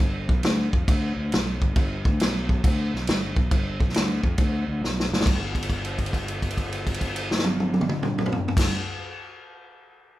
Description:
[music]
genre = blues rock power trio and southern rock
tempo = 137 BPM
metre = 4/4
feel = swing 67% on 8ths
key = G mixolydian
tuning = A4 = 439 Hz
[part]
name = fuzz fingered electric bass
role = bass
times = 0.0-8.7 s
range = G1 to F2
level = -28 LUFS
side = equal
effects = overdrive
[part]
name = vintage drum kit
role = drums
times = 0.0-8.7 s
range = crash cymbal, kick drum, snare drum, toms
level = -23 LUFS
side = equal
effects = none
[sound]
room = light reverb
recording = band playing live in one room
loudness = -22 LUFS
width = side -15 dB against mid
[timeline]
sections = 0.0-5.3 A section; 5.3-8.8 B section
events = drum fill 4.8-5.3; held note 5.3-8.5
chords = none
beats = | 0.01 0.45 0.88 1.32 | 1.76 2.20 2.63 3.07 | 3.51 3.95 4.38 4.82 | 5.26 5.70 6.14 6.58 | 7.01 7.45 7.89 8.33

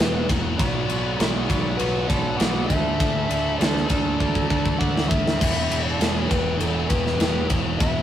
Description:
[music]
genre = hard rock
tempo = 100 BPM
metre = 4/4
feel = straight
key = unclear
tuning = A4 = 436 Hz
[part]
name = biting lead guitar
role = melody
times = 0.0-8.0 s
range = A4 to F#5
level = -29 LUFS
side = left 2 dB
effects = overdrive
[part]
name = octave-fuzz lead guitar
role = second line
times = 0.0-8.0 s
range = E4 to D5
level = -34 LUFS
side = right 2 dB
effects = distortion
[part]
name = percussive tonewheel organ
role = sustained chords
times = 0.0-8.0 s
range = E3 to F#5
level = -38 LUFS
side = right 1 dB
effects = none
[part]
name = overdriven semi-hollow guitar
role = riff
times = 0.0-8.0 s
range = E2 to D4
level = -29 LUFS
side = right 5 dB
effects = none
[part]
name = scooped high-gain guitar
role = riff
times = 0.0-8.0 s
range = E2 to D4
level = -30 LUFS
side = left 5 dB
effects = distortion
[part]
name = growling picked electric bass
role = bass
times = 0.0-8.0 s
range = E1 to D2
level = -28 LUFS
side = equal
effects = overdrive
[part]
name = tight metal drum kit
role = drums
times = 0.0-7.9 s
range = crash cymbal, kick drum, ride cymbal, snare drum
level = -23 LUFS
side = equal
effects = none
[sound]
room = light reverb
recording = rough rehearsal-room recording, warm saturation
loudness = -20 LUFS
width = side -10 dB against mid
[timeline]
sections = 0.0-8.0 A section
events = drum fill 4.2-5.4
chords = 0.0 Em; 0.6 Bm; 2.7 D5; 5.4 Em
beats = | 0.59 1.19 1.79 2.39 | 3.00 3.60 4.20 4.80 | 5.40 6.00 6.61 7.21 | 7.81

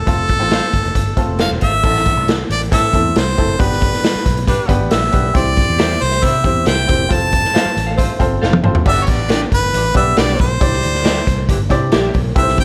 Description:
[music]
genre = uptempo 1960s-style soul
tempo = 137 BPM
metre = 4/4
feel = straight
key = G mixolydian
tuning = A4 = 440 Hz
[part]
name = clear harmonica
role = melody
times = 0.0-12.6 s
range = A4 to A5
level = -20 LUFS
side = equal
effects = none
[part]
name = vintage muted fingered electric bass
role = bass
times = 0.0-12.6 s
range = E1 to C3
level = -23 LUFS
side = equal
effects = none
[part]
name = clear baby grand piano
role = accompaniment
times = 0.1-12.6 s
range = A3 to D5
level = -24 LUFS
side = equal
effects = none
[part]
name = raw garage drum kit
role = drums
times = 0.1-12.6 s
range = crash cymbal, hi-hat, kick drum, snare drum, toms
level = -19 LUFS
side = equal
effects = none
[part]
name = clean electric guitar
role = stabs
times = 0.5-1.7, 5.8-12.1 s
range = D4 to F5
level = -26 LUFS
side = equal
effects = none
[part]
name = warm saxophone section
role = second line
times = 2.7-12.2 s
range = E3 to D5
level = -25 LUFS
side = equal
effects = none
[sound]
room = light reverb, small room reverb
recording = none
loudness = -15 LUFS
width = mono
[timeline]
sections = 0.0-1.8 A section; 1.8-8.9 B section; 8.9-12.6 C section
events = drum fill 8.4-8.9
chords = 0.1 F; 1.8 Am; 3.6 G; 5.4 C; 7.1 F; 8.9 G; 10.6 Cadd9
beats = | 0.07 0.51 0.95 1.40 | 1.84 2.28 2.72 3.16 | 3.60 4.04 4.47 4.91 | 5.35 5.79 6.23 6.67 | 7.11 7.55 7.99 8.42 | 8.86 9.30 9.74 10.17 | 10.61 11.05 11.49 11.92 | 12.36

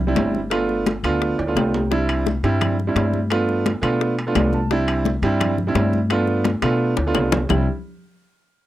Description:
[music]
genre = Afro-Cuban jazz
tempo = 172 BPM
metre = 4/4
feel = straight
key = C major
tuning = A4 = 442 Hz
[part]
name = upright bass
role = bass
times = 0.0-7.7 s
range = G1 to B2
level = -23 LUFS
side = left 1 dB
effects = none
[part]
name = warm grand piano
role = accompaniment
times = 0.1-7.7 s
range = G3 to A5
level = -21 LUFS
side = right 2 dB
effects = none
[part]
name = bongos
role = percussion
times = 0.2-7.6 s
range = none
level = -26 LUFS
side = left 10 dB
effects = none
[part]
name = congas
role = percussion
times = 0.2-7.6 s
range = none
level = -26 LUFS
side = left 2 dB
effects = none
[part]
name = timbales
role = percussion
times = 0.2-7.6 s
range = none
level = -29 LUFS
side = right 2 dB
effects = none
[part]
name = claves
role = percussion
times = 0.5-7.6 s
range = none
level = -30 LUFS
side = left 13 dB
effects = none
[sound]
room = little or no reverb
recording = dry, close 1970s-style studio recording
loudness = -18 LUFS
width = side -14 dB against mid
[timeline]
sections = 0.0-7.5 A section; 7.5-8.7 B section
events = grand piano fill 1.2-1.9, 4.2-4.7; drum fill 1.4-1.9, 6.4-7.5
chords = 0.0 Cadd9; 0.5 G7; 1.9 Cadd9; 3.3 G7; 4.7 Cadd9; 6.1 G7; 7.5 Cadd9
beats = 0.17 | 0.52 0.87 1.22 1.56 | 1.91 2.26 2.61 2.96 | 3.31 3.66 4.00 4.35 | 4.70 5.05 5.40 5.75 | 6.10 6.44 6.79 7.14 | 7.49

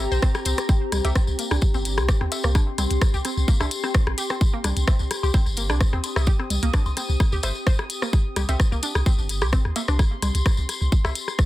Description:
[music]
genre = minimal techno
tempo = 129 BPM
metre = 4/4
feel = swing 53% on 16ths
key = C minor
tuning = A4 = 439 Hz
[part]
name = punchy sub bass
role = bass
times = 0.0-11.1 s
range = G1 to Eb2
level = -24 LUFS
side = equal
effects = sidechain pumping
[part]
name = warbly tape-like pad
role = texture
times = 0.0-11.5 s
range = C4 to Eb6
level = -32 LUFS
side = left 2 dB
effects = chorus, built-in reverb, sidechain pumping
[part]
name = resonant blip pluck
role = riff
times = 0.1-9.9 s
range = Bb3 to C5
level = -32 LUFS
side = right 1 dB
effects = chorus, sidechain pumping, tape echo
[part]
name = tambourine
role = percussion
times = 0.1-11.5 s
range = none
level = -33 LUFS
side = left 4 dB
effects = none
[part]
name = electronic kick drum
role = drums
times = 0.2-11.5 s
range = none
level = -19 LUFS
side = equal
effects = none
[part]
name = minimal click drum kit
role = drums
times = 0.2-11.5 s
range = hi-hat, rim click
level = -28 LUFS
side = left 1 dB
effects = soft clipping on snare
[part]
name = electronic woodblock, rim click, congas and cowbell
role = percussion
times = 0.2-11.4 s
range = none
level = -30 LUFS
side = left 2 dB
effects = soft clipping on snare, tape echo
[sound]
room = light reverb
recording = dense, heavily limited modern master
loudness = -20 LUFS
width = side -16 dB against mid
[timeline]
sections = 0.0-11.5 A section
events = none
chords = 0.0 C5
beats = 0.23 | 0.69 1.16 1.62 2.08 | 2.55 3.02 3.48 3.95 | 4.41 4.88 5.34 5.81 | 6.27 6.74 7.20 7.67 | 8.13 8.60 9.06 9.53 | 9.99 10.46 10.92 11.39

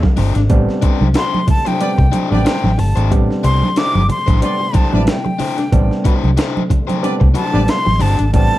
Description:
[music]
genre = funk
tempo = 92 BPM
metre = 4/4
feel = swing 56% on 16ths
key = A minor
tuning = A4 = 440 Hz
[part]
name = clear horn section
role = second line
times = 0.0-7.6 s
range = G4 to D5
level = -27 LUFS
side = equal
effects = none
[part]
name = crunchy overdriven guitar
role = accompaniment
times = 0.0-8.2 s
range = D4 to C5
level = -22 LUFS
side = left 6 dB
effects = none
[part]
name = percussive tonewheel organ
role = sustained chords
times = 0.0-8.6 s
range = C3 to A3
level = -27 LUFS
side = left 1 dB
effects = overdrive, chorus vibrato, slow rotary speaker
[part]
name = breakbeat sampler-style drum kit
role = drums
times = 0.0-8.6 s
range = hi-hat, kick drum, snare drum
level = -16 LUFS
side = equal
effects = none
[part]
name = congas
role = percussion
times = 0.0-8.5 s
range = none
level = -22 LUFS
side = right 3 dB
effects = none
[part]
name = overdriven clav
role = stabs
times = 0.2-8.6 s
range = G3 to E4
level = -22 LUFS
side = right 2 dB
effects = none
[part]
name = vintage muted fingered electric bass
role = bass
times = 0.2-8.5 s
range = G1 to C2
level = -15 LUFS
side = equal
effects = none
[part]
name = breathy jazz flute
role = melody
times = 1.2-8.6 s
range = G5 to D6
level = -20 LUFS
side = left 1 dB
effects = none
[sound]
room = light reverb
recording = dark, warm production, vinyl crackle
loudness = -12 LUFS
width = side -15 dB against mid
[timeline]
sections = 0.0-8.6 A section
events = flute solo 0.0-8.6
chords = 0.0 Am11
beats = | 0.50 1.15 1.81 2.46 | 3.11 3.77 4.42 5.07 | 5.73 6.38 7.03 7.68 | 8.34

